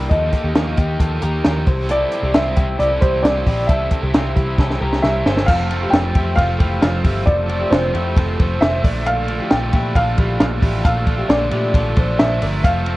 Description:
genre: jangly indie pop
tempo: 134 BPM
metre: 4/4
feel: straight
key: F major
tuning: A4 = 440 Hz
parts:
  - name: warm upright piano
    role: melody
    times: 0.0-13.0 s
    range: Bb4 to G5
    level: -21 LUFS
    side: equal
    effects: plate reverb
  - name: biting overdriven guitar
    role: accompaniment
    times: 0.0-13.0 s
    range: F2 to G4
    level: -24 LUFS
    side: right 2 dB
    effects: none
  - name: twelve-string electric guitar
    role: arpeggios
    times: 0.0-13.0 s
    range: Bb3 to D5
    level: -27 LUFS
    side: left 3 dB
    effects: spring reverb, tape echo, plate reverb
  - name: vintage muted picked electric bass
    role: bass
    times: 0.0-13.0 s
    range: F1 to Bb2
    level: -21 LUFS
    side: equal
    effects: none
  - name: compact cocktail drum kit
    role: drums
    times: 0.1-13.0 s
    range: crash cymbal, hi-hat, kick drum, ride cymbal, snare drum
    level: -18 LUFS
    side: equal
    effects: none
room: light reverb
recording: worn, warbling old tape, cassette tape, warbly pitch drift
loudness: -15 LUFS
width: side -18 dB against mid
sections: 0.0-5.5 A section; 5.5-13.0 B section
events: drum fill 4.6-5.5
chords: 0.1 Ebadd9; 1.7 C; 5.5 F; 8.8 Bbmaj7

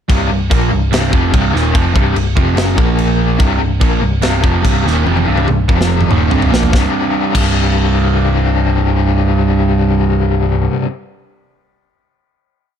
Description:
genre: hard rock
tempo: 145 BPM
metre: 4/4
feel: straight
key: C minor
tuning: A4 = 439 Hz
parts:
  - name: overdriven electric guitar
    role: riff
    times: 0.1-10.9 s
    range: C2 to Bb3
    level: -18 LUFS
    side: left 12 dB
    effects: tremolo
  - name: overdriven semi-hollow guitar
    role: riff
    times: 0.1-10.9 s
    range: C2 to Bb3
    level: -17 LUFS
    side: right 10 dB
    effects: phaser
  - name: overdriven picked electric bass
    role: bass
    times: 0.1-10.7 s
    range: C1 to Bb1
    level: -16 LUFS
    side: equal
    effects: none
  - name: tight metal drum kit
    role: drums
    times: 0.1-7.5 s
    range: crash cymbal, kick drum, snare drum, toms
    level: -16 LUFS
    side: equal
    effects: none
room: small room ambience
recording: none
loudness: -11 LUFS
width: side -8 dB against mid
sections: 0.1-6.7 riff; 6.7-10.0 final chord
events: drum fill 5.1-6.7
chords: 0.1 Cm; 2.8 Bb5; 3.4 Cm; 5.7 F5; 6.1 Cm; 6.7 C5

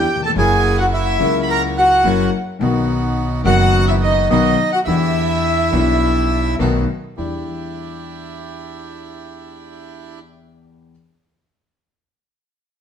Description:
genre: tango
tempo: 106 BPM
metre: 4/4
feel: rubato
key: E minor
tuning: A4 = 440 Hz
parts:
  - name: bandoneon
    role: melody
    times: 0.0-6.6 s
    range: D#4 to B5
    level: -17 LUFS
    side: right 2 dB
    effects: none
  - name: dark studio violin section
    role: second line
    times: 0.0-6.5 s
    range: D#5 to B5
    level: -24 LUFS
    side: left 2 dB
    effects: none
  - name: warm concert grand piano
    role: accompaniment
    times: 0.0-10.9 s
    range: F#1 to F#4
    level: -20 LUFS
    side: left 4 dB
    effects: none
  - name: bandoneon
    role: stabs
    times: 0.0-10.2 s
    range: A#3 to A4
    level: -29 LUFS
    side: right 3 dB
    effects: none
  - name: upright bass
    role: bass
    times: 0.0-7.4 s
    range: F#1 to E2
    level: -20 LUFS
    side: right 2 dB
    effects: none
room: wet stone room reverb, RT60 1.1 s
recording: band playing live in one room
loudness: -14 LUFS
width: side -8 dB against mid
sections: 0.0-7.2 A section; 7.2-9.4 B section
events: none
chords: 0.4 F#7; 2.6 B; 4.9 Em7; 6.6 B7; 7.2 Em7

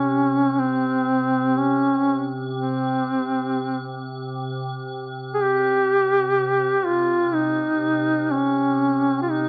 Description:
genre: caucasian folk, Caucasian lament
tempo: free time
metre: none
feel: none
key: C phrygian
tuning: A4 = 440 Hz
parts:
  - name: warm duduk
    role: melody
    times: 0.0-9.5 s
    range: C4 to Ab4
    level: -22 LUFS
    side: equal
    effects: none
  - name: icy glass pad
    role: drone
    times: 0.0-9.5 s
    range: C3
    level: -31 LUFS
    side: equal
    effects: chorus, built-in reverb
room: light reverb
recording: faint mains hum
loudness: -22 LUFS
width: mono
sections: 0.0-9.5 A section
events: none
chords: none

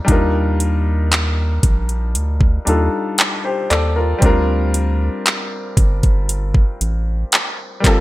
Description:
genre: contemporary R&B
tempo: 58 BPM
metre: 4/4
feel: straight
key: Bb major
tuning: A4 = 440 Hz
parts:
  - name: clear baby grand piano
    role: accompaniment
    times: 0.0-8.0 s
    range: G3 to D5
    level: -21 LUFS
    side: left 2 dB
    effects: none
  - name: round analog bass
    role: bass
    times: 0.1-8.0 s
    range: G1 to Eb2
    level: -18 LUFS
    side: equal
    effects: none
  - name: smooth R&B drum kit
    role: drums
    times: 0.1-8.0 s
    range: handclaps, hi-hat, kick drum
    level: -15 LUFS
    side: equal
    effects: gated reverb
room: digital ambience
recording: bright 1980s-style digital production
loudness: -15 LUFS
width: side -17 dB against mid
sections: 0.0-8.0 A section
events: none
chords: 0.1 Ebmaj9; 4.2 Bb69

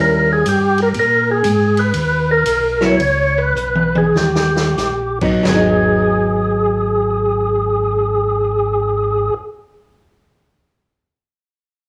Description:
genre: soul jazz organ trio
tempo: 85-122 BPM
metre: 4/4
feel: swing 66% on 8ths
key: G# minor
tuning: A4 = 440 Hz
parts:
  - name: percussive tonewheel organ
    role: melody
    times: 0.0-9.3 s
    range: G4 to C#5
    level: -18 LUFS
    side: equal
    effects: slow rotary speaker, overdrive, chorus vibrato, cassette tape, plate reverb
  - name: archtop guitar, miked and amplified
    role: accompaniment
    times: 0.0-9.4 s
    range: F#3 to E4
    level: -21 LUFS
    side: equal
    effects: none
  - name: mellow tonewheel organ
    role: bass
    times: 0.0-9.3 s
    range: G#1 to A#2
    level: -23 LUFS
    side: equal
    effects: slow rotary speaker
  - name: swinging big-band drum kit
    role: drums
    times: 0.5-5.7 s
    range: crash cymbal, hi-hat, kick drum, ride cymbal, snare drum, splash cymbal, toms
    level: -26 LUFS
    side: equal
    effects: none
room: moderate studio reverb, RT60 0.6 s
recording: home recording on cassette, studio reverb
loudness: -16 LUFS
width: mono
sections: 0.0-5.5 A section; 5.5-11.1 B section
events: slowing down 0.9-5.5; drum fill 3.6-4.8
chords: 0.0 D#7b9; 0.9 G#madd9; 1.9 D#5; 3.0 G#madd11; 4.1 D#; 5.5 G#m7

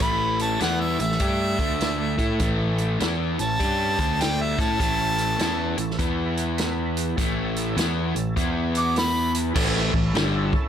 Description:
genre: blues rock power trio and southern rock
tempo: 101 BPM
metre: 4/4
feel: swing 64% on 8ths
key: A mixolydian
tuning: A4 = 441 Hz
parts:
  - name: clear harmonica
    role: melody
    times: 0.0-9.3 s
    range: E5 to D6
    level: -26 LUFS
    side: equal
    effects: overdrive, tape echo
  - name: biting lead guitar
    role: second line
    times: 0.0-9.3 s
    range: G3 to F#4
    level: -33 LUFS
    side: right 6 dB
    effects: overdrive
  - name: overdriven tonewheel organ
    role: sustained chords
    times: 0.0-10.7 s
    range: A3 to C5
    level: -37 LUFS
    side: right 4 dB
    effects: slow rotary speaker, chorus vibrato
  - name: crunchy overdriven guitar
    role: riff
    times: 0.0-10.5 s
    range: G2 to A4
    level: -26 LUFS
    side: left 1 dB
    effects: none
  - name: growling fingered electric bass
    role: bass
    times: 0.0-10.5 s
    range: G1 to A2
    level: -28 LUFS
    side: equal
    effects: overdrive
  - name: vintage drum kit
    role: drums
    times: 0.0-10.6 s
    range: crash cymbal, hi-hat, kick drum, snare drum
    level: -27 LUFS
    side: equal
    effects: none
room: little or no reverb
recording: none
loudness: -21 LUFS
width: side -9 dB against mid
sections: 0.0-9.5 A section; 9.5-10.7 B section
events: none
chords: 0.0 A; 1.5 D5; 2.1 A; 3.9 D5; 4.5 A; 6.0 E5; 7.2 A; 8.4 E5; 9.5 A

